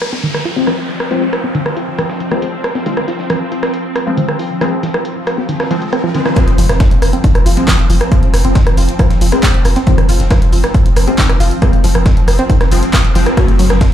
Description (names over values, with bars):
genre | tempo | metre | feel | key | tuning
driving peak-time techno | 137 BPM | 4/4 | straight | F minor | A4 = 440 Hz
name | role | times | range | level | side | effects
swarming drone | drone | 0.0-13.9 s | F3 to C4 | -21 LUFS | equal | built-in reverb, sidechain pumping
breakbeat sampler-style drum kit | drums | 0.0-13.9 s | hi-hat, snare drum | -31 LUFS | equal | none
punchy analog drum machine | drums | 0.0-13.9 s | handclaps, hi-hat, ride cymbal, rim click | -19 LUFS | right 1 dB | sidechain pumping on hats, sidechain pumping on cymbals
downlifter, riser and impact | sound effects | 0.0-8.1 s | none | -25 LUFS | equal | none
wide unison pluck | riff | 0.1-13.6 s | Eb3 to F4 | -20 LUFS | equal | cassette tape, sidechain pumping, ping-pong delay
rave stab | stabs | 0.6-13.5 s | F3 to Db4 | -20 LUFS | left 3 dB | chorus, built-in reverb, sidechain pumping, ping-pong delay
electronic kick drum | drums | 6.4-13.9 s | none | -11 LUFS | equal | overdrive
saturated sub bass | bass | 6.5-13.8 s | F1 to Gb1 | -15 LUFS | equal | tube saturation, sidechain pumping, low-pass filter
room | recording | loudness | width
light reverb, digital ambience | played on a big sound system in a bare room, large studio reverb | -11 LUFS | side -11 dB against mid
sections
0.0-6.4 A section; 6.4-13.9 B section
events
filter sweep on synth arpeggio sound 0.0-6.4; filter sweep on synth stab 0.0-6.4; riser 2.9-6.4; drop 6.4-13.9; impact 6.4-8.1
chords
0.0 Fm; 13.4 Gbm